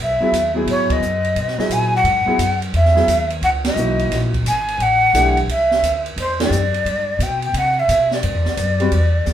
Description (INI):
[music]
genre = modal jazz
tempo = 175 BPM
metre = 4/4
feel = swing 65% on 8ths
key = C# dorian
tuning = A4 = 444 Hz
[part]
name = breathy mellow jazz flute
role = melody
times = 0.0-9.3 s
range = C5 to G#5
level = -18 LUFS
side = equal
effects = none
[part]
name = upright bass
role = bass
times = 0.0-9.3 s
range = G#1 to C3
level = -20 LUFS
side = equal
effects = none
[part]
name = clear concert grand piano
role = accompaniment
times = 0.2-6.5, 8.8-8.9 s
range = E3 to B4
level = -22 LUFS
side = left 1 dB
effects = none
[part]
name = open jazz drum kit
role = drums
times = 0.3-9.3 s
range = hi-hat, kick drum, ride cymbal, snare drum, toms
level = -26 LUFS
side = right 3 dB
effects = none
[sound]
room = wet studio ambience, RT60 0.5 s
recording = band playing live in one room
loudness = -15 LUFS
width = side -10 dB against mid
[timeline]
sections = 0.0-9.3 A section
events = band accent 0.8, 3.6, 6.3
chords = 0.0 C#m11 (rootless); 4.8 Am11